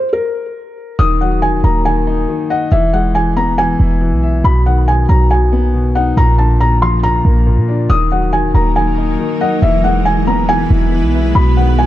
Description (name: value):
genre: hip hop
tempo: 139 BPM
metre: 4/4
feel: half-time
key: Eb phrygian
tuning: A4 = 440 Hz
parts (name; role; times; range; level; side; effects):
- felt-muted upright piano; melody; 0.0-11.9 s; Bb4 to Eb6; -17 LUFS; equal; low-pass filter
- dark concert grand piano; accompaniment; 1.0-11.9 s; Bb2 to E5; -17 LUFS; left 3 dB; low-pass filter
- clean 808-style bass; bass; 1.0-11.9 s; Eb1 to Bb2; -13 LUFS; equal; none
- granular cloud pad; sustained chords; 8.6-11.9 s; Gb3 to B4; -20 LUFS; equal; built-in reverb
room: small room ambience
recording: dark, warm production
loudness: -11 LUFS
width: side -14 dB against mid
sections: 1.0-11.9 A section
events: break 0.0-1.0; stop 0.0-1.0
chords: 0.0 N.C.; 1.0 Ebm; 2.7 E; 4.4 B; 6.2 Bb; 7.9 Ebm; 9.6 E; 11.3 B